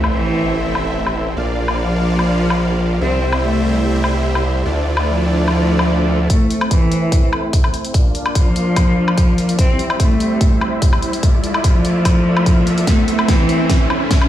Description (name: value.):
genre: heavy wobble dubstep.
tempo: 146 BPM.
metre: 4/4.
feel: half-time.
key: A phrygian.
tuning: A4 = 440 Hz.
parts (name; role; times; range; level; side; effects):
supersaw chords; sustained chords; 0.0-14.3 s; G3 to F5; -22 LUFS; equal; sidechain pumping, low-pass filter.
formant-sweep wobble bass; bass; 0.0-6.3 s; A1 to D2; -19 LUFS; equal; chorus, overdrive.
big-room dance drum kit; drums; 0.0-14.3 s; hi-hat, snare drum, woodblock; -23 LUFS; left 2 dB; low-pass filter on hats, studio reverb, low-pass filter on perc, low-pass filter on snare, low-pass filter on toms, low-pass filter on cymbals.
sub drop, swell and riser; sound effects; 0.0-1.4, 5.7-14.3 s; none; -26 LUFS; equal; none.
bright cello; melody; 0.1-13.8 s; E3 to C4; -18 LUFS; equal; low-pass filter, digital delay.
electronic kick drum; drums; 6.3-14.2 s; none; -15 LUFS; equal; studio reverb.
room: light reverb, digital ambience.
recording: played on a big sound system in a bare room, stone room reverb.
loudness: -13 LUFS.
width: side -12 dB against mid.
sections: 0.0-6.3 A section; 6.3-14.3 B section.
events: impact 0.0-1.4; swell 5.7-6.3; build-up 6.3-14.3; riser 6.3-14.3; filter sweep on supersaw synth 6.3-14.3; drum fill 12.9-14.3.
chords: 0.0 Am; 1.4 Bb; 3.0 C; 4.7 Dmadd9; 6.3 Am; 7.9 Bb; 9.6 C; 11.2 Dmadd9; 12.9 Am.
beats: 0.14 0.55 0.96 | 1.37 1.78 2.19 2.60 | 3.01 3.42 3.83 4.24 | 4.66 5.07 5.48 5.89 | 6.30 6.71 7.12 7.53 | 7.94 8.35 8.77 9.18 | 9.59 10.00 10.41 10.82 | 11.23 11.64 12.05 12.46 | 12.87 13.29 13.70 14.11.